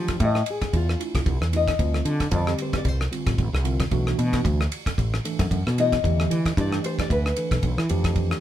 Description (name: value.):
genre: electric jazz fusion.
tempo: 113 BPM.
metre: 4/4.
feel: swing 56% on 16ths.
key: F lydian.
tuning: A4 = 440 Hz.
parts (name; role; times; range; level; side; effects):
nylon-string guitar; melody; 0.0-8.4 s; F4 to Eb5; -28 LUFS; left 5 dB; none.
mellow tine electric piano; accompaniment; 0.0-8.4 s; D3 to A4; -29 LUFS; right 2 dB; medium stereo tremolo.
fretless electric bass; bass; 0.0-8.3 s; A1 to F3; -23 LUFS; equal; none.
damped 70s drum kit; drums; 0.1-8.4 s; kick drum, ride cymbal, rim click; -27 LUFS; equal; none.
room: light reverb.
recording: band playing live in one room.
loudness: -21 LUFS.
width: side -12 dB against mid.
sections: 0.0-8.4 A section.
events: nylon-string guitar solo 0.0-8.4.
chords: 0.0 Fmaj13; 1.8 Dm7; 3.9 Bm7; 6.0 Em7; 7.9 Fmaj13.